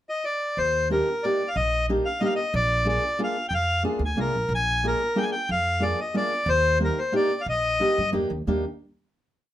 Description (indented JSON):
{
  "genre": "musette waltz",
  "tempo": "183 BPM",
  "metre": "3/4",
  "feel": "swing 53% on 8ths",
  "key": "Eb major",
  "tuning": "A4 = 440 Hz",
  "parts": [
    { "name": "accordion", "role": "melody", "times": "0.1-8.1 s", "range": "Bb4 to Ab5", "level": "-24 LUFS", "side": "left 1 dB", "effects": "none" },
    { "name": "upright bass", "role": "bass", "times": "0.6-8.6 s", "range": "Bb1 to G2", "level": "-28 LUFS", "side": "right 1 dB", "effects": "none" },
    { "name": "fingerpicked steel-string acoustic guitar", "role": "accompaniment", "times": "0.9-8.6 s", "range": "Bb3 to Ab4", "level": "-26 LUFS", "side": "equal", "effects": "none" }
  ],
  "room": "moderate small room reverb, RT60 0.5 s",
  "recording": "none",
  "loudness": "-22 LUFS",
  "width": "side -12 dB against mid",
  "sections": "0.0-0.6 pickup bar; 0.6-8.5 A section; 8.5-9.5 final chord",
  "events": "none",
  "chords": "0.0 N.C.; 0.6 Ebmaj7; 2.5 Bb7; 6.5 Ebmaj7",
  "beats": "0.24 | 0.57 0.91 1.23 | 1.56 1.89 2.21 | 2.53 2.86 3.18 | 3.51 3.83 4.17 | 4.50 4.83 5.16 | 5.49 5.81 6.14 | 6.47 6.80 7.12 | 7.46 7.79 8.12 | 8.46"
}